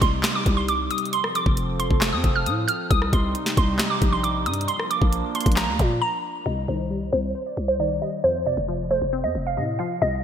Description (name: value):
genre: hip hop, trap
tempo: 135 BPM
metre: 4/4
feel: half-time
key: C dorian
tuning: A4 = 440 Hz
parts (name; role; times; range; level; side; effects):
- glassy wavetable pluck; melody; 0.0-10.2 s; C5 to F6; -25 LUFS; right 1 dB; chorus, low-pass filter
- warm analog pad; sustained chords; 0.0-6.4 s; C3 to A4; -30 LUFS; right 1 dB; chorus
- growling 808-style bass; bass; 0.0-10.2 s; F1 to Bb2; -26 LUFS; equal; none
- trap drum kit; drums; 0.0-5.9 s; handclaps, hi-hat, kick drum, rim click, snare drum; -23 LUFS; equal; gated reverb
- hollow square pluck; accompaniment; 6.5-10.2 s; F2 to C5; -30 LUFS; left 5 dB; chorus, low-pass filter
room: moderate lush hall reverb, RT60 2.1 s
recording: bright 1980s-style digital production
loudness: -20 LUFS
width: side -8 dB against mid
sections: 0.0-6.5 A section; 6.5-10.2 B section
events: break 6.0-6.5; filter sweep 6.5-10.2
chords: 0.0 Cm; 1.1 F; 2.9 Cm; 4.7 Bb; 6.5 Cm; 8.2 F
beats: 0.24 0.68 | 1.13 1.57 2.02 2.46 | 2.91 3.35 3.79 4.24 | 4.68 5.13 5.57 6.02 | 6.46 6.91 7.35 7.79 | 8.24 8.68 9.13 9.57 | 10.02